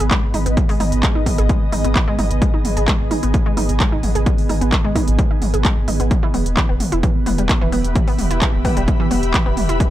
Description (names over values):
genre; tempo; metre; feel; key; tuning
driving peak-time techno; 130 BPM; 4/4; straight; G# harmonic minor; A4 = 439 Hz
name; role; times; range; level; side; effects
analog pluck; riff; 0.0-9.9 s; E3 to G#4; -24 LUFS; equal; chorus, overdrive, sidechain pumping, analog delay
warm sub bass; bass; 0.0-9.8 s; E1 to G#1; -21 LUFS; equal; overdrive, sidechain pumping, low-pass filter
techno drum kit; drums; 0.0-9.9 s; handclaps, hi-hat, toms; -23 LUFS; equal; sidechain pumping on hats, sidechain pumping on toms
ethereal airy pad; texture; 0.0-9.9 s; B3 to B5; -24 LUFS; right 2 dB; ensemble chorus, built-in reverb, sidechain pumping
electronic kick drum; drums; 0.1-9.9 s; none; -18 LUFS; equal; none
room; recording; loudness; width
digital ambience; dry, gritty hardware recording; -15 LUFS; side -13 dB against mid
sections
0.0-9.9 A section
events
none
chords
0.0 G#m; 6.1 Em